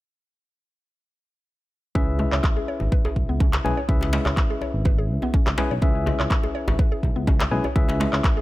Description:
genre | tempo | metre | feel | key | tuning
afro house | 124 BPM | 4/4 | straight | C# minor pentatonic | A4 = 441 Hz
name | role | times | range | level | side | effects
tine electric piano | stabs | 1.9-8.4 s | C#4 to G#5 | -28 LUFS | left 2 dB | overdrive, sidechain pumping, ping-pong delay
mallet-like synth pluck | arpeggios | 2.0-8.4 s | G#3 to C#5 | -31 LUFS | equal | chorus, sidechain pumping, ping-pong delay
smooth synth bass | bass | 2.0-8.2 s | G#1 to C#2 | -25 LUFS | equal | sidechain pumping
electronic kick drum | drums | 2.0-8.3 s | none | -20 LUFS | equal | none
djembe | percussion | 2.2-8.3 s | none | -30 LUFS | equal | none
electronic handclaps | drums | 2.3-8.3 s | none | -28 LUFS | equal | none
room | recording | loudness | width
little or no reverb | none | -20 LUFS | side -18 dB against mid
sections
2.0-8.4 A section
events
none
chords
2.0 C#m7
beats
| 1.95 2.44 2.92 3.41 | 3.89 4.37 4.86 5.34 | 5.83 6.31 6.79 7.28 | 7.76 8.24

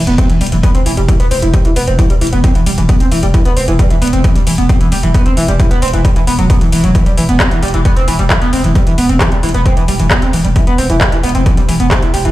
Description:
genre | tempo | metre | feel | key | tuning
driving peak-time techno | 133 BPM | 4/4 | straight | E minor | A4 = 440 Hz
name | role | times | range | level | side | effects
growling 808-style bass | bass | 0.0-12.3 s | E1 | -15 LUFS | equal | overdrive, sidechain pumping, low-pass filter
overdriven synth lead | riff | 0.1-12.3 s | E3 to C4 | -15 LUFS | right 1 dB | distortion, wide subtle chorus, cassette tape, sidechain pumping, tape echo
techno drum kit | drums | 0.1-12.3 s | handclaps, hi-hat | -20 LUFS | left 1 dB | sidechain pumping on hats, small room ambience, sidechain pumping on toms, sidechain pumping on cymbals
electronic kick drum | drums | 0.2-12.0 s | none | -12 LUFS | equal | small room ambience
room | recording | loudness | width
light reverb, digital ambience | played on a big sound system in a bare room, stone room reverb | -9 LUFS | side -16 dB against mid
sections
0.0-12.3 A section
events
none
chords
none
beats
0.18 0.63 1.08 | 1.54 1.99 2.44 2.89 | 3.34 3.79 4.24 4.69 | 5.14 5.60 6.05 6.50 | 6.95 7.40 7.85 8.30 | 8.75 9.21 9.66 10.11 | 10.56 11.01 11.46 11.91

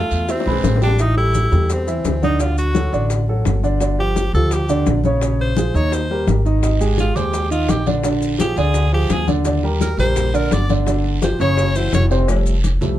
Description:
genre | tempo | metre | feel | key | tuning
Afro-Cuban jazz | 170 BPM | 4/4 | straight | unclear | A4 = 440 Hz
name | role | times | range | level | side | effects
edgy tenor saxophone | melody | 0.0-12.0 s | C4 to D5 | -23 LUFS | equal | none
warm grand piano | accompaniment | 0.0-13.0 s | C3 to E6 | -20 LUFS | right 1 dB | none
upright bass | bass | 0.0-13.0 s | F1 to E2 | -18 LUFS | equal | none
congas | percussion | 0.1-13.0 s | none | -24 LUFS | left 3 dB | none
guiro | percussion | 0.1-1.0, 6.6-13.0 s | none | -35 LUFS | right 5 dB | none
maracas | percussion | 0.1-13.0 s | none | -35 LUFS | left 3 dB | none
bongos and cowbell | percussion | 0.3-12.8 s | none | -28 LUFS | left 6 dB | none
room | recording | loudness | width
light reverb | dark, warm production, lossy compression artefacts | -15 LUFS | side -13 dB against mid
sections
1.0-12.3 A section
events
tenor saxophone solo 0.0-12.3; drum fill 0.3-1.0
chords
0.3 E; 1.0 Am7; 2.4 D; 3.8 Gm7; 5.2 Bbm11; 5.9 Eb; 6.6 Abmaj7; 8.0 Bb7; 9.5 Ebmaj7; 10.9 G5; 11.6 Gb5; 12.3 Fadd9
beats
0.29 0.64 | 0.99 1.35 1.70 2.05 | 2.40 2.75 3.10 3.46 | 3.81 4.16 4.51 4.87 | 5.22 5.57 5.92 6.28 | 6.63 6.98 7.34 7.69 | 8.04 8.40 8.75 9.10 | 9.46 9.81 10.16 10.52 | 10.87 11.22 11.58 11.93 | 12.28 12.64

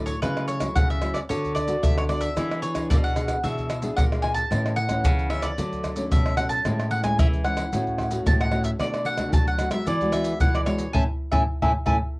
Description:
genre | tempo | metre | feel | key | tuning
samba and choro | 112 BPM | 4/4 | straight | A major | A4 = 440 Hz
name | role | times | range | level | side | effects
nylon-string guitar | accompaniment | 0.0-12.0 s | A2 to G#4 | -31 LUFS | left 1 dB | cassette tape
nylon-string guitar | bass | 0.0-12.0 s | A2 to F#3 | -29 LUFS | equal | none
mandolin | melody | 0.1-12.0 s | B4 to A5 | -27 LUFS | equal | none
maracas, surdo, pandeiro and tamborim | percussion | 0.1-12.0 s | none | -24 LUFS | equal | none
room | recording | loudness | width
light reverb | home recording on cassette | -21 LUFS | side -24 dB against mid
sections
0.0-12.2 A section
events
band accent 10.9-12.2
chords
0.2 F#m7/C#; 1.3 Bm/D; 2.4 E7; 4.5 Aadd9; 5.6 Dmaj7; 6.7 Amaj7; 7.7 F#m/A; 8.8 Bm7; 9.9 Eadd9; 10.9 Amaj7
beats
| 0.22 0.76 1.29 1.83 | 2.37 2.90 3.44 3.97 | 4.51 5.04 5.58 6.12 | 6.65 7.19 7.73 8.26 | 8.80 9.34 9.87 10.41 | 10.95 11.49

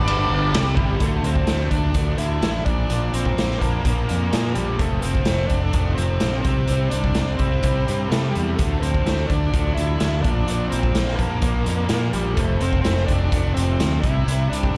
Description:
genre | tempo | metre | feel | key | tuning
classic rock | 127 BPM | 4/4 | straight | D minor | A4 = 445 Hz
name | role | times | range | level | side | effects
octave-fuzz lead guitar | melody | 0.0-14.8 s | G3 to D5 | -29 LUFS | equal | distortion, slapback echo
picked plugged-in twelve-string acoustic guitar | accompaniment | 0.0-14.8 s | F2 to G4 | -38 LUFS | equal | none
biting overdriven guitar | riff | 0.0-14.8 s | F2 to E4 | -32 LUFS | equal | slapback echo
tight distorted guitar | riff | 0.0-14.8 s | F2 to E4 | -35 LUFS | equal | distortion, slapback echo
fuzz fingered electric bass | bass | 0.0-14.8 s | F1 to C3 | -25 LUFS | equal | overdrive
raw garage drum kit | drums | 0.1-14.7 s | hi-hat, kick drum, ride cymbal, snare drum | -26 LUFS | equal | none
room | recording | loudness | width
small room ambience | live gig heard through the venue's PA, club reverb | -21 LUFS | mono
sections
0.0-1.0 A section; 1.0-14.8 B section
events
none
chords
0.0 G; 0.5 C; 1.0 Dm; 2.7 Bb; 4.8 F; 6.4 C; 8.6 Dm; 10.2 Bb; 12.4 F; 14.0 C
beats
0.07 0.54 | 1.01 1.48 1.95 2.42 | 2.90 3.37 3.84 4.32 | 4.79 5.26 5.74 6.21 | 6.69 7.16 7.63 8.11 | 8.58 9.06 9.53 10.01 | 10.48 10.95 11.43 11.90 | 12.38 12.85 13.33 13.80 | 14.28 14.75

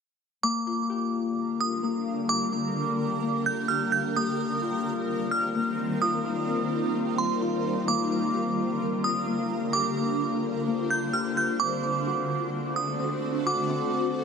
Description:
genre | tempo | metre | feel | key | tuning
hip hop | 129 BPM | 4/4 | half-time | G minor | A4 = 435 Hz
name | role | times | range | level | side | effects
glassy synth bell | melody | 0.4-14.2 s | C6 to G6 | -29 LUFS | right 3 dB | chorus, phaser, digital delay
shimmering ambient pad | sustained chords | 1.2-14.2 s | D3 to C5 | -30 LUFS | right 1 dB | chorus, built-in reverb, phaser
Celtic harp | arpeggios | 0.4-14.2 s | Bb3 to G4 | -30 LUFS | left 5 dB | digital delay
room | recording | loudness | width
moderate huge ambient reverb, RT60 5.0 s | none | -25 LUFS | side -6 dB against mid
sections
0.4-14.2 A section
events
none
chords
0.4 Gm7; 4.2 F9sus4; 7.9 Gm7; 11.6 D7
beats
| 0.43 0.90 1.37 1.83 | 2.30 2.76 3.23 3.69 | 4.16 4.62 5.09 5.55 | 6.02 6.48 6.95 7.41 | 7.88 8.34 8.81 9.27 | 9.74 10.20 10.67 11.13 | 11.60 12.06 12.53 12.99 | 13.46 13.92

